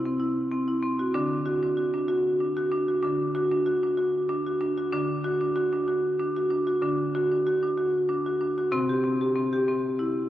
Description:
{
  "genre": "world meditative, meditative tuned percussion",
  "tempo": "95 BPM",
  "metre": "3/4",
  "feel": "swing 53% on 16ths",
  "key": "unclear",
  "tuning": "A4 = 438 Hz",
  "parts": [
    { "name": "marimba with hard mallets", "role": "solo", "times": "0.0-10.3 s", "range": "C3 to G4", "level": "-24 LUFS", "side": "equal", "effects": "none" }
  ],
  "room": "wet cathedral reverb, RT60 4.5 s",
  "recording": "worn, warbling old tape, cassette tape, warbly pitch drift",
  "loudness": "-24 LUFS",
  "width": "side -13 dB against mid",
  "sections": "0.0-8.7 A section; 8.7-10.3 B section",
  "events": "none",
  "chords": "0.0 C; 1.1 D; 8.7 C",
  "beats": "0.51 | 1.14 1.77 2.40 | 3.03 3.66 4.29 | 4.92 5.56 6.19 | 6.82 7.45 8.08 | 8.72 9.35 9.98"
}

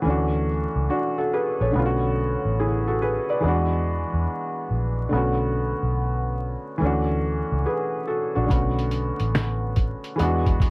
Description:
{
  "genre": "lo-fi hip hop",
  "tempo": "71 BPM",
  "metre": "4/4",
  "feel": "swing 65% on 16ths",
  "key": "B dorian",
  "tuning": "A4 = 439 Hz",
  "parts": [
    { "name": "felt-muted upright piano", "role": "accompaniment", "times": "0.0-10.7 s", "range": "D3 to D5", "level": "-23 LUFS", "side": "equal", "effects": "low-pass filter, plate reverb" },
    { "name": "vintage muted fingered electric bass", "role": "bass", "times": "0.1-10.7 s", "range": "A1 to E2", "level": "-24 LUFS", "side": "equal", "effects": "none" },
    { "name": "lo-fi sampler-style drum kit", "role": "drums", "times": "8.5-10.7 s", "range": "hi-hat, kick drum, snare drum", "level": "-22 LUFS", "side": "equal", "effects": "none" }
  ],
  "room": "light reverb",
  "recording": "worn, warbling old tape, cassette tape, vinyl crackle, warbly pitch drift",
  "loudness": "-21 LUFS",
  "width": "side -31 dB against mid",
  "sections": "0.0-10.7 A section",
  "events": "none",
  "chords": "0.1 Dmaj9; 1.7 Bm7; 3.4 E9; 5.1 Bm7; 6.8 Dmaj9; 8.5 Bm7; 10.2 E9",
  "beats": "0.05 0.90 | 1.74 2.58 3.43 4.28 | 5.12 5.96 6.81 7.66 | 8.50 9.35 10.19"
}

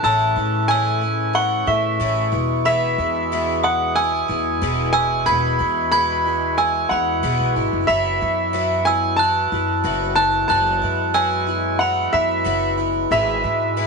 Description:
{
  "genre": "folk",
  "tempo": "92 BPM",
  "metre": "4/4",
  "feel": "straight",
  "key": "E major",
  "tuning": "A4 = 439 Hz",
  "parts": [
    { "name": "clear upright piano", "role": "melody", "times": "0.0-13.9 s", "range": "E5 to B5", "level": "-20 LUFS", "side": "left 1 dB", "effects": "none" },
    { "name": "glockenspiel with hard plastic mallets", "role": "second line", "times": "0.0-13.9 s", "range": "B5 to G#6", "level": "-23 LUFS", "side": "right 10 dB", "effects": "none" },
    { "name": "picked twelve-string acoustic guitar", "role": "accompaniment", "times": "0.0-13.9 s", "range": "E2 to G#4", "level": "-25 LUFS", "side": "left 13 dB", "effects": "none" },
    { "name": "hand-pumped harmonium", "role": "sustained chords", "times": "0.0-13.9 s", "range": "B2 to B4", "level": "-31 LUFS", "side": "right 12 dB", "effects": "none" },
    { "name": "upright bass", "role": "bass", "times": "0.0-13.9 s", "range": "E1 to A2", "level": "-26 LUFS", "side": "equal", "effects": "none" }
  ],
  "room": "light reverb, small room ambience",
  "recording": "1960s-style stereo with parts hard left and right, nothing above 10.3 kHz",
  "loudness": "-17 LUFS",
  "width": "side -4 dB against mid",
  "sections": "0.0-13.9 A section",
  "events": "none",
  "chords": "0.0 A; 2.3 E; 7.9 Bsus4/F#; 13.1 E/G#",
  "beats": "| 0.04 0.70 1.35 2.01 | 2.66 3.31 3.97 4.62 | 5.28 5.93 6.58 7.24 | 7.89 8.54 9.20 9.85 | 10.50 11.16 11.81 12.46 | 13.12 13.77"
}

